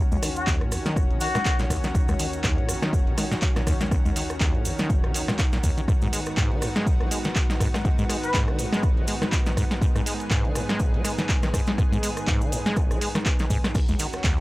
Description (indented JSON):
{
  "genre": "acid house",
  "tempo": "122 BPM",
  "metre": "4/4",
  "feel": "swing 57% on 16ths",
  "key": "unclear",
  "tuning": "A4 = 441 Hz",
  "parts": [
    { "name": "lush unison pad", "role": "sustained chords", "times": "0.0-14.4 s", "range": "Eb2 to Ab4", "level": "-31 LUFS", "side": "equal", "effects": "chorus, sidechain pumping" },
    { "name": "deep acid bass", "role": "riff", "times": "0.0-14.4 s", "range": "Eb1 to Ab3", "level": "-28 LUFS", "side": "equal", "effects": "overdrive, tape echo" },
    { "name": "punchy analog drum machine", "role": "drums", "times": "0.1-14.4 s", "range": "congas, crash cymbal, handclaps, hi-hat, ride cymbal, rim click, snare drum", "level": "-28 LUFS", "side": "equal", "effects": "none" },
    { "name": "cabasa", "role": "percussion", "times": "0.1-14.4 s", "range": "none", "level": "-37 LUFS", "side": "right 2 dB", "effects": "none" },
    { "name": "trumpet with cup mute", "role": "melody", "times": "0.4-1.6, 8.2-8.4 s", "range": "Gb4 to Cb5", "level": "-29 LUFS", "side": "left 2 dB", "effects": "tape echo" },
    { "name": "electronic kick drum", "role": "drums", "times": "0.5-14.4 s", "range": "none", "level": "-24 LUFS", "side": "equal", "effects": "none" }
  ],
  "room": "little or no reverb",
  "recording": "dry, gritty hardware recording",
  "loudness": "-21 LUFS",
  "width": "side -19 dB against mid",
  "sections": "0.0-14.4 A section",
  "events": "none",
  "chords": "0.0 Ebm7; 5.9 Abm7; 13.8 Ebm7"
}